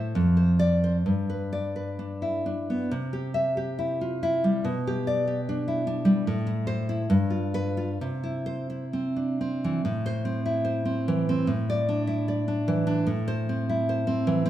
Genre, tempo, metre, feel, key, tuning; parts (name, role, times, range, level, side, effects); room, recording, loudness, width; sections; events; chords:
romantic piece for solo classical guitar; 62-77 BPM; 2/4; rubato; C major, A minor from 9.9 s; A4 = 443 Hz
nylon-string guitar; solo; 0.0-14.5 s; F2 to E5; -24 LUFS; equal
wet recital hall reverb, RT60 1.6 s; -24 LUFS; side -12 dB against mid
0.0-9.9 A section; 9.9-14.5 B section
0.1 Dm7/F; 1.0 G; 2.9 C; 4.6 G/B; 6.3 Am; 7.1 G7; 8.0 C; 9.9 Am; 11.5 Asus4; 13.1 Am